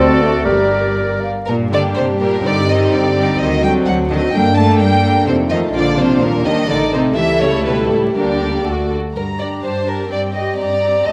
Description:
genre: quick classical-period movement for symphony orchestra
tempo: 116-129 BPM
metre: 2/4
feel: straight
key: G minor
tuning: A4 = 440 Hz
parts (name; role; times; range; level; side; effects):
- warm chamber violin section; melody; 0.0-11.1 s; A4 to Bb5; -23 LUFS; equal; none
- bright clarinet; second line; 0.0-1.2 s; F#4 to G4; -25 LUFS; equal; none
- mellow hollow concert flute; second line; 0.0-1.5 s; D5 to F5; -24 LUFS; equal; none
- warm chamber violin section; second line; 0.0-11.1 s; D4 to Eb5; -24 LUFS; equal; none
- warm oboe; second line; 0.0-1.2 s; A4 to Bb4; -24 LUFS; equal; none
- dark chamber viola section; accompaniment; 0.0-11.1 s; D3 to G4; -25 LUFS; equal; none
- mellow French horn section; sustained chords; 0.0-8.9 s; F3 to G4; -22 LUFS; equal; none
- rich chamber cello section; bass; 0.0-11.1 s; D2 to A3; -23 LUFS; equal; none
- rich chamber double bass section; bass; 0.0-8.9 s; G1 to G2; -24 LUFS; equal; none
room: moderate concert hall reverb, RT60 2.0 s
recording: vinyl crackle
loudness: -16 LUFS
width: mono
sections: 0.0-1.5 A section; 1.5-9.2 B section; 9.2-11.1 B section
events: none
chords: 0.5 Gm; 2.4 Cm/G; 3.4 D7b9; 4.3 Gm; 5.3 F7; 5.7 Bb; 6.2 Ebmaj7; 6.7 Adim; 7.2 A7/C#; 8.2 Gm/D; 8.7 D; 9.2 Gm; 10.1 C5/G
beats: | 0.46 0.97 | 1.47 1.96 | 2.44 2.91 | 3.38 3.85 | 4.32 4.79 | 5.26 5.73 | 6.21 6.68 | 7.16 7.65 | 8.16 8.66 | 9.15 9.64 | 10.12 10.59 | 11.06

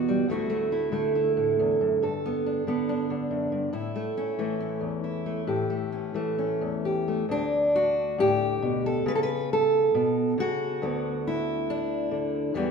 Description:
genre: folk, solo fingerstyle acoustic guitar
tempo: 69 BPM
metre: 4/4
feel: rubato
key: D major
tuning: A4 = 439 Hz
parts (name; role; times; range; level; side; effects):
- fingerpicked steel-string acoustic guitar; solo; 0.0-12.7 s; D2 to B4; -24 LUFS; equal; none
room: moderate concert hall reverb, RT60 2.0 s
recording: minimal, uncompressed stereo recording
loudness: -24 LUFS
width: side -5 dB against mid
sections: 0.0-7.3 A section; 7.3-12.7 B section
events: none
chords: 0.3 Dadd9; 2.0 Gadd9; 3.7 A; 7.3 D5; 9.1 A/C#; 10.8 Bm/D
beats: | 0.29 1.16 2.03 2.89 | 3.75 4.61 5.49 6.40 | 7.30 8.19 9.07 9.95 | 10.82 11.69 12.55

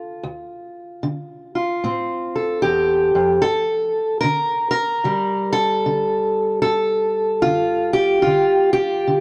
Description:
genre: acoustic country blues, solo or duo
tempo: 75 BPM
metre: 4/4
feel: swing 64% on 8ths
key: unclear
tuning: A4 = 439 Hz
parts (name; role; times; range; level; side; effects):
- fingerpicked steel-string acoustic guitar; solo; 0.0-9.2 s; D2 to Bb4; -20 LUFS; equal; none
room: moderate plate reverb, RT60 2.9 s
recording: dark, warm production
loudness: -19 LUFS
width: mono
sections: 0.0-9.2 A section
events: none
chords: 0.0 Dm9; 3.4 Gm9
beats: | 0.22 1.03 1.83 2.63 | 3.44 4.24 5.04 5.84 | 6.65 7.45 8.25 9.05

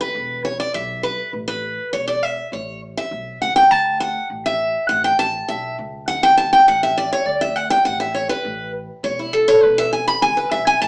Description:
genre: bluegrass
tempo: 202 BPM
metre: 4/4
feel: straight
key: D major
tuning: A4 = 440 Hz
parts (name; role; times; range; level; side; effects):
- picked steel-string acoustic guitar; accompaniment; 0.0-10.9 s; E4 to B5; -19 LUFS; equal; none
- upright bass; bass; 0.0-10.9 s; E1 to D2; -38 LUFS; equal; none
room: wet studio reverb, RT60 0.5 s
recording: heard from further back in the room, small speaker sound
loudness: -19 LUFS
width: mono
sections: 0.0-7.3 A section; 7.3-10.9 A section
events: steel-string acoustic guitar solo 0.0-10.9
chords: 0.1 E5; 1.3 A; 3.7 Dadd9; 4.9 A; 6.1 D5; 8.4 A5; 9.6 E5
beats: | 0.14 0.44 0.73 1.03 | 1.33 1.63 1.92 2.22 | 2.52 2.81 3.11 3.41 | 3.70 4.00 4.30 4.59 | 4.89 5.19 5.48 5.78 | 6.08 6.37 6.67 6.97 | 7.26 7.56 7.86 8.15 | 8.45 8.74 9.04 9.33 | 9.63 9.92 10.22 10.51 | 10.81

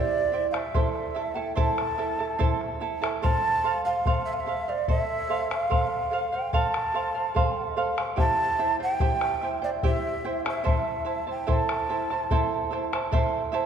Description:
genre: andean folk, Andean ensemble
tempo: 73 BPM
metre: 3/4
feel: straight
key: A minor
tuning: A4 = 442 Hz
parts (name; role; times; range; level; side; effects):
- mellow hollow large quena; melody; 0.0-12.7 s; D5 to A5; -28 LUFS; right 2 dB; none
- charango; accompaniment; 0.0-13.7 s; E4 to A5; -28 LUFS; right 4 dB; none
- bombo; percussion; 0.5-13.3 s; none; -29 LUFS; left 2 dB; none
room: wet concert hall reverb, RT60 2.4 s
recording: small room ambience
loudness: -24 LUFS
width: side -8 dB against mid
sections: 0.0-13.1 A section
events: none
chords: 0.0 C; 0.7 Am; 3.2 F; 8.2 C; 10.7 Am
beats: | 0.73 1.56 2.39 | 3.22 4.05 4.87 | 5.70 6.53 7.35 | 8.18 9.00 9.83 | 10.65 11.47 12.29 | 13.12

